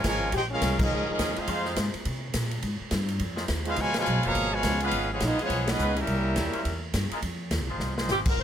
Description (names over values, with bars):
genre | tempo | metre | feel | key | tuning
jazz, big band swing | 209 BPM | 4/4 | swing 61% on 8ths | F minor | A4 = 439 Hz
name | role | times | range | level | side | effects
bright trumpet section | melody | 0.0-6.8 s | Cb4 to Bb5 | -28 LUFS | left 1 dB | none
clear trombone section | second line | 0.0-6.8 s | Cb3 to G4 | -31 LUFS | right 2 dB | none
upright bass | bass | 0.0-8.4 s | F1 to C3 | -30 LUFS | equal | none
swinging big-band drum kit | drums | 0.0-8.4 s | crash cymbal, hi-hat, kick drum, ride cymbal, snare drum | -31 LUFS | equal | none
muted trombone section | sustained chords | 1.5-8.4 s | Ab3 to C5 | -35 LUFS | left 1 dB | none
warm saxophone section | melody | 8.1-8.4 s | G4 to C5 | -26 LUFS | equal | none
room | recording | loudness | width
light reverb | close, detailed microphones | -25 LUFS | side -9 dB against mid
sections
0.0-8.4 A section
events
band accent 0.8, 3.9, 5.6; drum fill 7.8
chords
0.0 Bbm7; 1.5 Fm7; 3.8 Db7; 6.1 C7b9; 7.2 Fm7